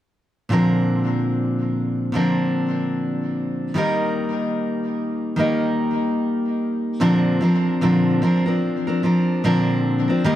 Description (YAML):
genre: pop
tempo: 74 BPM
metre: 4/4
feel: swing 60% on 16ths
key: Bb major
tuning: A4 = 440 Hz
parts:
  - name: picked steel-string acoustic guitar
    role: solo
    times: 0.5-10.4 s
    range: Bb2 to Bb4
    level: -18 LUFS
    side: equal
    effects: ping-pong delay
room: wet small room ambience, RT60 0.5 s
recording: none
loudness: -18 LUFS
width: side -12 dB against mid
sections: 0.5-7.0 A section; 7.0-10.4 B section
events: none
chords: 0.5 Bbadd9; 3.8 Eb; 7.0 Bbadd9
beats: | 0.50 1.32 2.13 2.94 | 3.75 4.57 5.38 6.19 | 7.00 7.81 8.62 9.44 | 10.25